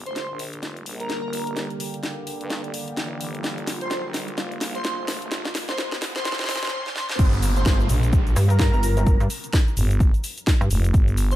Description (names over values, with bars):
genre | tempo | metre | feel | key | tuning
bass house | 128 BPM | 4/4 | swing 59% on 16ths | G minor | A4 = 441 Hz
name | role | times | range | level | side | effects
sweeping resonant pad | sustained chords | 0.0-6.7 s | D3 to G4 | -34 LUFS | right 1 dB | chorus, phaser, sidechain pumping
growling FM bass | bass | 0.0-11.4 s | F1 to G2 | -25 LUFS | equal | overdrive, sidechain pumping, high-pass filter
riser and downlifter | sound effects | 0.0-10.9 s | none | -36 LUFS | equal | none
airy dreamy lead | melody | 0.1-11.4 s | Bb4 to C5 | -31 LUFS | equal | chorus, tape echo
house drum kit | drums | 0.1-11.4 s | crash cymbal, hi-hat, shaker, snare drum | -28 LUFS | equal | overdrive, studio ambience
electronic kick drum | drums | 7.2-11.1 s | none | -19 LUFS | equal | overdrive, studio ambience
pulsing pluck wobble bass | bass | 7.7-10.7 s | G1 to G2 | -20 LUFS | equal | chorus, sidechain pumping
room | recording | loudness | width
little or no reverb | high-pass filter | -21 LUFS | side -14 dB against mid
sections
0.0-7.2 A section; 7.2-11.4 B section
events
build-up 0.0-7.2; drum fill 0.0-6.7, 6.8-7.2; riser 0.0-7.2; filter sweep 0.0-7.2; break 6.7-7.2; drop 7.2-11.4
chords
0.0 Gm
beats
0.16 0.63 1.10 | 1.57 2.03 2.50 2.97 | 3.44 3.91 4.38 4.85 | 5.32 5.78 6.25 6.72 | 7.19 7.66 8.13 8.60 | 9.07 9.53 10.00 10.47 | 10.94